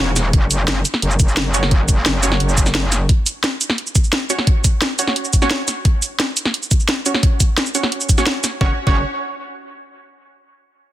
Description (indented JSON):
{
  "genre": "dark technical drum and bass",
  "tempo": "174 BPM",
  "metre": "4/4",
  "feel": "straight",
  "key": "unclear",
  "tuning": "A4 = 440 Hz",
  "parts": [
    { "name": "metallic wobble bass", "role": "bass", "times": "0.0-3.1, 8.6-9.0 s", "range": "E1 to F#1", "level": "-18 LUFS", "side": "equal", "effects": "chorus, overdrive" },
    { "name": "drum and bass drum kit", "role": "drums", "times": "0.2-8.5 s", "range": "hi-hat, shaker, snare drum", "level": "-18 LUFS", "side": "equal", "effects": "small room ambience" },
    { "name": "electronic kick drum", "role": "drums", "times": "0.3-8.9 s", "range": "none", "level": "-15 LUFS", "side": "equal", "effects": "overdrive, small room ambience" },
    { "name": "orchestra-hit-like synth stab", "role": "stabs", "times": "1.5-9.0 s", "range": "C#4 to C#5", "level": "-24 LUFS", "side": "right 3 dB", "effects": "built-in reverb, dub echo" }
  ],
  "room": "little or no reverb",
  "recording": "dense, heavily limited modern master",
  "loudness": "-15 LUFS",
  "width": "side -14 dB against mid",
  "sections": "0.0-8.6 A section; 8.6-10.0 B section",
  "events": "none",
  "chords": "0.0 F#5",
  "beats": "| 0.33 0.68 1.02 1.37 | 1.71 2.06 2.40 2.75 | 3.09 3.44 3.78 4.13 | 4.47 4.82 5.16 5.51 | 5.85 6.20 6.54 6.89 | 7.23 7.58 7.92 8.27 | 8.61 8.96"
}